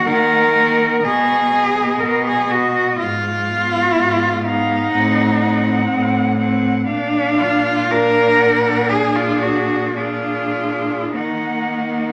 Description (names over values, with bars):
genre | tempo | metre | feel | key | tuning
classical, lyrical piece for cello ensemble | 48-64 BPM | 4/4 | rubato | unclear | A4 = 440 Hz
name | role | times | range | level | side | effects
rich cello | melody | 0.0-12.1 s | Ab4 to Gb5 | -26 LUFS | equal | none
warm cello | second line | 0.0-12.1 s | Eb4 to Bb4 | -19 LUFS | equal | none
rich cello | accompaniment | 0.0-12.1 s | Bb3 to D4 | -24 LUFS | equal | none
clear cello | bass | 0.1-12.1 s | Ab2 to Eb3 | -25 LUFS | equal | none
room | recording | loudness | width
moderate large studio reverb, RT60 1.1 s | none | -17 LUFS | mono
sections
0.0-12.1 A section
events
none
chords
0.0 Ebm; 1.0 B; 3.0 Fdim/Ab; 4.9 Adim7; 6.9 Bb; 11.1 Ebm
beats
0.06 1.03 2.00 | 2.98 3.96 4.92 5.90 | 6.87 7.90 8.89 9.97 | 11.14